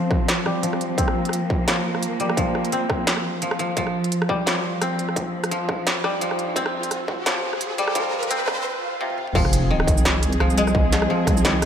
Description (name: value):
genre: half-time drum and bass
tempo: 172 BPM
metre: 4/4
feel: swing 55% on 16ths, half-time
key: F minor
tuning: A4 = 441 Hz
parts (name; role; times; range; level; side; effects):
- dark symphonic cello section; sustained chords; 0.0-11.7 s; F3 to Ab4; -26 LUFS; right 1 dB; sidechain pumping
- koto; arpeggios; 0.0-11.7 s; C3 to C4; -25 LUFS; left 2 dB; low-pass filter, dub echo
- electronic kick drum; drums; 0.1-11.3 s; none; -24 LUFS; equal; distortion, studio reverb
- industrial drum kit; drums; 0.1-11.7 s; crash cymbal, hi-hat, rim click, shaker, snare drum, toms; -25 LUFS; right 1 dB; studio reverb
- riser, swell and impact; sound effects; 5.3-10.7 s; none; -30 LUFS; right 1 dB; none
- deep soft wobble bass; bass; 9.4-11.7 s; F1 to C2; -22 LUFS; equal; chorus
room: moderate lush hall reverb, RT60 2.3 s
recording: high-pass filter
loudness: -20 LUFS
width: side -8 dB against mid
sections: 0.0-9.4 A section; 9.4-11.7 B section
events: build-up 0.0-9.4; filter sweep on koto 0.0-9.4; filter sweep 0.0-9.4; riser 5.3-8.7; break 8.7-9.4; swell 8.7-9.4; drum fill 9.1; drop 9.4-11.7; impact 9.4-10.7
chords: 0.0 F5; 3.8 Csus4; 9.4 Fm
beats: 0.28 0.63 | 0.98 1.33 1.68 2.03 | 2.38 2.73 3.07 3.42 | 3.77 4.12 4.47 4.82 | 5.17 5.51 5.86 6.21 | 6.56 6.91 7.26 7.61 | 7.96 8.31 8.65 9.00 | 9.35 9.70 10.05 10.40 | 10.75 11.10 11.45